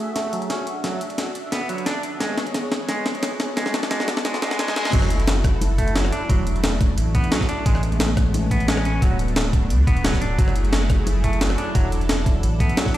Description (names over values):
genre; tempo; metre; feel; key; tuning
liquid drum and bass; 176 BPM; 4/4; swing 53% on 16ths; unclear; A4 = 440 Hz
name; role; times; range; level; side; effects
warm analog pad; sustained chords; 0.0-13.0 s; F#3 to A5; -28 LUFS; left 1 dB; chorus
riser, reverse cymbal and sub drop; sound effects; 2.5-6.3 s; none; -34 LUFS; left 1 dB; none
semi-hollow electric guitar; arpeggios; 0.2-13.0 s; F#3 to D4; -28 LUFS; right 2 dB; low-pass filter, tape echo
breakbeat sampler-style drum kit; drums; 0.2-13.0 s; crash cymbal, hi-hat, rim click, snare drum; -25 LUFS; equal; none
warm sub bass; bass; 4.9-12.8 s; D1 to D2; -22 LUFS; equal; none
electronic kick drum; drums; 4.9-12.9 s; none; -20 LUFS; equal; none
bongos; percussion; 5.6-5.7, 8.3-8.4, 11.1 s; none; -33 LUFS; left 4 dB; none
room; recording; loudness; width
light reverb, digital ambience; played on a big sound system in a bare room, stone room reverb, high-pass filter; -19 LUFS; side -14 dB against mid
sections
0.0-4.9 A section; 4.9-13.0 B section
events
build-up 0.0-4.9; drum fill 0.0-4.9; filter sweep on clean electric guitar 0.0-4.9; filter sweep 0.0-4.9; riser 2.5-4.9; reverse cymbal 4.2-4.9; drop 4.9-13.0; impact 4.9-6.3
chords
0.0 F#m9; 0.7 Esus2; 2.2 G#madd11; 3.6 D6; 4.9 F#m7; 6.1 E9sus4; 7.7 Amaj9; 9.0 D6; 10.4 F#m9; 11.6 E9sus4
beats
0.16 0.50 | 0.84 1.18 1.52 1.86 | 2.20 2.54 2.89 3.23 | 3.57 3.91 4.25 4.59 | 4.93 5.27 5.61 5.95 | 6.29 6.64 6.98 7.32 | 7.66 8.00 8.34 8.68 | 9.02 9.36 9.70 10.04 | 10.39 10.73 11.07 11.41 | 11.75 12.09 12.43 12.77